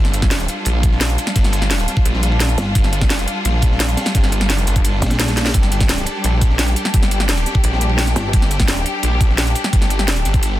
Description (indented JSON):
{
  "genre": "dark technical drum and bass",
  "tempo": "172 BPM",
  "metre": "4/4",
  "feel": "straight",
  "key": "G minor",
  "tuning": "A4 = 439 Hz",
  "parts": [
    { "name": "clear studio string section", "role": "sustained chords", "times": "0.0-10.6 s", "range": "G3 to G4", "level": "-24 LUFS", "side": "left 1 dB", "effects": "sidechain pumping" },
    { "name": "snarling distorted saw bass", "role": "bass", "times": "0.0-10.6 s", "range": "G1 to Bb1", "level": "-18 LUFS", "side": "equal", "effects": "distortion" },
    { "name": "drum and bass drum kit", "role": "drums", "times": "0.0-10.5 s", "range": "hi-hat, snare drum", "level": "-21 LUFS", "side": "equal", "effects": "none" },
    { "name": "crunchy breakbeat drum kit", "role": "drums", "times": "0.1-10.5 s", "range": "ride cymbal, snare drum", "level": "-29 LUFS", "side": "equal", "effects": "high-pass filter on cymbals, high-pass filter on snare, high-pass filter on room" },
    { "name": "electronic kick drum", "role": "drums", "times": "0.2-10.4 s", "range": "none", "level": "-16 LUFS", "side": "equal", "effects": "none" },
    { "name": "pulsing pluck wobble bass", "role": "bass", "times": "2.6-2.7, 5.0-5.5, 8.2-8.3 s", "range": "G1 to Bb1", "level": "-19 LUFS", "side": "equal", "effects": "chorus" }
  ],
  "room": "little or no reverb",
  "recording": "dense, heavily limited modern master",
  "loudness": "-14 LUFS",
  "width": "side -14 dB against mid",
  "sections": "0.0-10.6 A section",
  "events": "drum fill 5.4",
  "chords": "0.0 Gm"
}